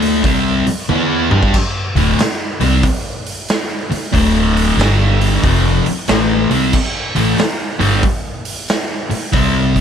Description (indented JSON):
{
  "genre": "blues rock power trio and southern rock",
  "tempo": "92 BPM",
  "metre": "4/4",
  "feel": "swing 65% on 8ths",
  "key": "unclear",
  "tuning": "A4 = 440 Hz",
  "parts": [
    { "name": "sludgy distorted guitar", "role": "riff", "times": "0.0-9.8 s", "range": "D2 to G4", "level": "-14 LUFS", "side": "left 1 dB", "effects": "overdrive" },
    { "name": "upright bass", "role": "bass", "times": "0.0-9.8 s", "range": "D1 to G2", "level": "-18 LUFS", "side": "equal", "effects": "none" },
    { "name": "raw garage drum kit", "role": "drums", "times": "0.0-9.8 s", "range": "crash cymbal, hi-hat, kick drum, snare drum, splash cymbal, toms", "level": "-18 LUFS", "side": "right 1 dB", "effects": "none" }
  ],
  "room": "light reverb",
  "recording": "none",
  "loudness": "-13 LUFS",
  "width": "side -8 dB against mid",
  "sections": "0.0-9.8 A section",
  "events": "drum fill 0.9-1.5",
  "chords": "0.2 N.C.; 1.9 D5; 4.8 G5; 5.4 N.C.; 7.1 A5"
}